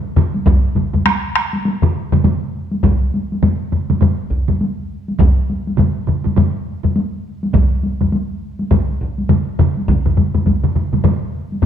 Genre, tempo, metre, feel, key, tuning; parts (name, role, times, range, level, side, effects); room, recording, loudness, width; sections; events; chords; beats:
japanese traditional, taiko drum ensemble; 102 BPM; 4/4; swing 60% on 16ths
solo taiko drums; percussion; 0.2-11.7 s; -18 LUFS; left 4 dB
taiko ensemble; percussion; 0.2-11.7 s; -21 LUFS; right 9 dB
solo taiko drums; percussion; 0.3-11.7 s; -21 LUFS; left 2 dB
taiko ensemble; percussion; 0.5-10.6 s; -18 LUFS; right 1 dB
wet recital hall reverb, RT60 1.5 s; dark, warm production; -14 LUFS; side -8 dB against mid
0.0-11.7 A section
| 0.46 1.06 1.65 2.24 | 2.83 3.42 4.01 4.60 | 5.19 5.78 6.37 6.96 | 7.54 8.13 8.71 9.30 | 9.88 10.47 11.05 11.63